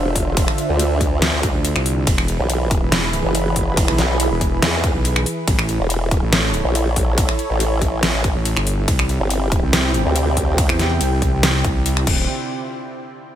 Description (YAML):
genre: heavy wobble dubstep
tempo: 141 BPM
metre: 4/4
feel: half-time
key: D minor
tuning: A4 = 440 Hz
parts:
  - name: supersaw pad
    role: sustained chords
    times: 0.0-12.3 s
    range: C3 to B5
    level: -24 LUFS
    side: right 1 dB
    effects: sidechain pumping, low-pass filter
  - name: formant-sweep wobble bass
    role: bass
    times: 0.0-10.7 s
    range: E1 to E2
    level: -19 LUFS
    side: equal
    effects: chorus, overdrive
  - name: dubstep drum kit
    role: drums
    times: 0.2-12.2 s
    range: crash cymbal, finger snaps, hi-hat, ride cymbal, snare drum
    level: -21 LUFS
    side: left 1 dB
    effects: overdrive
  - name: electronic kick drum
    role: drums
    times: 0.2-12.2 s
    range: none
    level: -20 LUFS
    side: equal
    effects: none
  - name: wobble bass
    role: bass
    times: 1.5-12.3 s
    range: D1 to E2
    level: -20 LUFS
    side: equal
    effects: chorus, overdrive
room: little or no reverb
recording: none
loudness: -16 LUFS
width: side -10 dB against mid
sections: 0.0-12.3 A section; 12.3-13.4 B section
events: drop 0.0-12.3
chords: 0.0 Dm7; 2.1 E; 5.5 A; 8.9 C; 12.1 Dm7; 12.3 N.C.